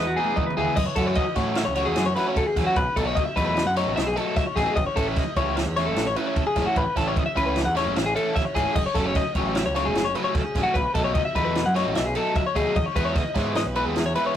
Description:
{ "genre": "math rock and midwest emo", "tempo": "150 BPM", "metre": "5/4", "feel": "straight", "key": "A lydian", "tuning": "A4 = 440 Hz", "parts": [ { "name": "twangy electric guitar", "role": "accompaniment", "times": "0.0-2.8 s", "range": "E2 to B4", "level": "-33 LUFS", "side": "right 5 dB", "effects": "none" }, { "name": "twelve-string electric guitar", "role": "arpeggios", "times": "0.0-14.4 s", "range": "F#4 to F#5", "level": "-25 LUFS", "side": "left 3 dB", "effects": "none" }, { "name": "biting overdriven guitar", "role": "riff", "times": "0.0-14.4 s", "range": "B2 to F#4", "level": "-27 LUFS", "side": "right 1 dB", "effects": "none" }, { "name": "growling picked electric bass", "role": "bass", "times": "0.0-14.1 s", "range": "E1 to A2", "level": "-29 LUFS", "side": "right 1 dB", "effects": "overdrive" }, { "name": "compact cocktail drum kit", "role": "drums", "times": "0.2-14.2 s", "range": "crash cymbal, kick drum, ride cymbal, snare drum, toms", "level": "-27 LUFS", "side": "right 1 dB", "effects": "none" } ], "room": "moderate small room reverb, RT60 0.5 s", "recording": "rough rehearsal-room recording, warm saturation", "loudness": "-21 LUFS", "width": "side -10 dB against mid", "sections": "0.8-14.4 A section", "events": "drum fill 0.0-0.8", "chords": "0.0 Emaj7; 0.8 F#m9; 2.8 B9sus4; 4.8 A6; 8.8 F#madd9; 10.8 B9sus4; 12.8 Emaj7" }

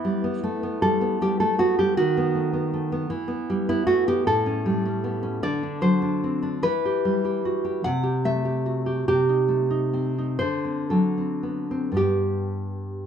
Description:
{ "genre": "romantic piece for solo classical guitar", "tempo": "36-53 BPM (dotted quarters)", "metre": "6/8", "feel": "rubato", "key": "unclear", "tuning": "A4 = 439 Hz", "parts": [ { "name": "nylon-string guitar", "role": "solo", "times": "0.0-13.1 s", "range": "G2 to F#5", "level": "-22 LUFS", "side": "equal", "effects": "none" } ], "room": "moderate large studio reverb, RT60 0.9 s", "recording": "band playing live in one room", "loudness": "-21 LUFS", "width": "side -8 dB against mid", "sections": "0.0-13.1 A section", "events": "none", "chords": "0.0 Em; 1.9 B7/D#; 3.1 Em; 4.3 A7; 5.4 D7; 6.6 Em; 7.8 Am7/C; 9.1 Am7b5/C; 10.4 D7; 12.0 G" }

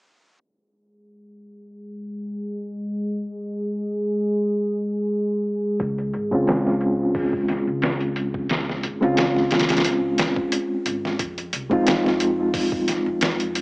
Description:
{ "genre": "trip hop", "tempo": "89 BPM", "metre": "4/4", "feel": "swing 54% on 16ths", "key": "F minor", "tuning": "A4 = 440 Hz", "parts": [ { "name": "warbly tape-like pad", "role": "sustained chords", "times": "1.9-11.2 s", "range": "Ab3 to Ab4", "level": "-27 LUFS", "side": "equal", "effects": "chorus, built-in reverb, vintage 12-bit sampler grit, cassette tape" }, { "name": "upright bass", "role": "bass", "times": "5.8-13.6 s", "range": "Ab1 to F2", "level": "-33 LUFS", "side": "equal", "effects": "none" }, { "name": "trip hop sampler-style drum kit", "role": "drums", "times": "5.8-13.6 s", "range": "hi-hat, kick drum, snare drum", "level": "-24 LUFS", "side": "equal", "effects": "overdrive, small room ambience, cassette tape" }, { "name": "reed electric piano", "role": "accompaniment", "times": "6.3-13.6 s", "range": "Ab3 to F4", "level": "-21 LUFS", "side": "equal", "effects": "fast tremolo, harmonic tremolo, cassette tape, tape echo" } ], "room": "moderate spring reverb, RT60 2.4 s", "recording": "home recording on cassette, low-pass filter, small speaker sound", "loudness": "-20 LUFS", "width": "side -30 dB against mid", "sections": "0.4-11.2 A section; 11.2-13.6 B section", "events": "filter sweep on ambient pad 0.4-11.2; filter sweep 0.4-11.2", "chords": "0.4 N.C.; 5.8 Dbmaj7; 11.2 Fm7" }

